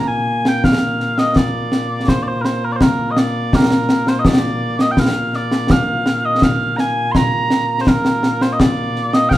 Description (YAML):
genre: scottish traditional, Scottish pipe music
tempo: 83 BPM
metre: 3/4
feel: straight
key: Bb mixolydian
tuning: A4 = 442 Hz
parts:
  - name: mellow small bagpipes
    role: melody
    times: 0.0-9.4 s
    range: Bb2 to C6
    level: -18 LUFS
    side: equal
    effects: none
  - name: concert snare drum and concert bass drum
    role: drums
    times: 0.5-9.4 s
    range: none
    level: -16 LUFS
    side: equal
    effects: none
room: wet stone room reverb, RT60 0.9 s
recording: band playing live in one room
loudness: -14 LUFS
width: side -14 dB against mid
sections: 0.0-9.4 A section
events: none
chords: none